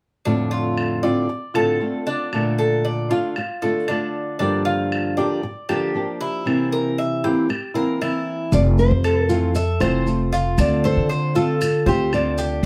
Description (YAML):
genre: latin, Cuban son and guajira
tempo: 116 BPM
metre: 4/4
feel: straight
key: F major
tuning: A4 = 441 Hz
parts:
  - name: flamenco guitar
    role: accompaniment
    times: 0.3-12.7 s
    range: F2 to G4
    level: -24 LUFS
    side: equal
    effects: none
  - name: Cuban tres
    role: arpeggios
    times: 0.3-12.6 s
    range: D4 to E5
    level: -27 LUFS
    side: equal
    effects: none
  - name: claves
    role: percussion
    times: 0.8-12.4 s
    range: none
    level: -33 LUFS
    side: equal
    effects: none
  - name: nylon-string guitar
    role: melody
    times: 8.5-12.5 s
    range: F4 to D5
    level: -26 LUFS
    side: equal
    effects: none
  - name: upright bass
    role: bass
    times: 8.5-12.7 s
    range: F1 to D3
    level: -22 LUFS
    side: equal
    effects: none
  - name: maracas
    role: percussion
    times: 8.5-12.6 s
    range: none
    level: -40 LUFS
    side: equal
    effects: none
room: wet studio ambience, RT60 0.5 s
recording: heard from further back in the room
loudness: -21 LUFS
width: mono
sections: 0.3-8.5 A section; 8.5-12.7 B section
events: none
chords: 0.3 F6; 2.3 Bbmaj7; 4.4 Gm7; 6.5 C7; 8.5 Fmaj7; 10.6 Dm7